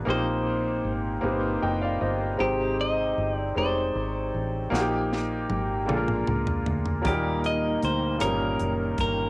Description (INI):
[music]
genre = slow gospel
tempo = 52 BPM (dotted quarters)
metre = 6/8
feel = straight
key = Eb major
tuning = A4 = 440 Hz
[part]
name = bright baby grand piano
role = accompaniment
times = 0.0-9.3 s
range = Bb2 to G5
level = -26 LUFS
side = equal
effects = cassette tape
[part]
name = fingered electric bass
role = bass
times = 0.0-9.3 s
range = F1 to Eb2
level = -30 LUFS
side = equal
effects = none
[part]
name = clean electric guitar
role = melody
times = 0.1-9.3 s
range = G4 to Eb5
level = -29 LUFS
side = equal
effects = none
[part]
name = tight funk drum kit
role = drums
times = 4.7-9.2 s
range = hi-hat, kick drum, rim click, snare drum, toms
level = -31 LUFS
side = equal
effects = cassette tape
[part]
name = percussive tonewheel organ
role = sustained chords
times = 7.1-9.3 s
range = Eb3 to G5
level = -34 LUFS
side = right 2 dB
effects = none
[sound]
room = light reverb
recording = home recording on cassette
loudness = -24 LUFS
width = side -24 dB against mid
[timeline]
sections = 0.0-9.3 A section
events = drum fill 4.7-7.0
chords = 0.1 Eb6; 2.4 Abmaj7; 4.7 Eb/Bb; 5.9 Bb7; 7.0 Ebmaj7; 8.2 Eb7